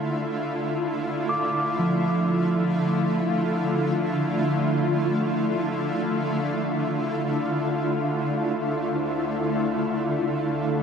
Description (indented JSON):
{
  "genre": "ambient",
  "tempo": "free time",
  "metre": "none",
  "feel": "none",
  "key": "D minor",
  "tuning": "A4 = 439 Hz",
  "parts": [
    { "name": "shimmering ambient pad", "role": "sustained chords", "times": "0.0-10.8 s", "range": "D3 to F4", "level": "-23 LUFS", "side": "equal", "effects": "chorus, built-in reverb" },
    { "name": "mellow tine electric piano", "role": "arpeggios", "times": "1.3-10.8 s", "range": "F3 to D6", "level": "-29 LUFS", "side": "right 1 dB", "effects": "diffuse ambient delay" },
    { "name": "warm studio cello section", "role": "bass", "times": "7.0-10.8 s", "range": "D2", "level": "-44 LUFS", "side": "left 1 dB", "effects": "none" }
  ],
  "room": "wet lush hall reverb, RT60 2.4 s",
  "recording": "dark, warm production",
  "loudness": "-22 LUFS",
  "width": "side -7 dB against mid",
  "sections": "0.0-7.0 A section; 7.0-10.8 B section",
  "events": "none",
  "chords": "0.0 Dmadd9; 7.0 Dm9",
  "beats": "free time"
}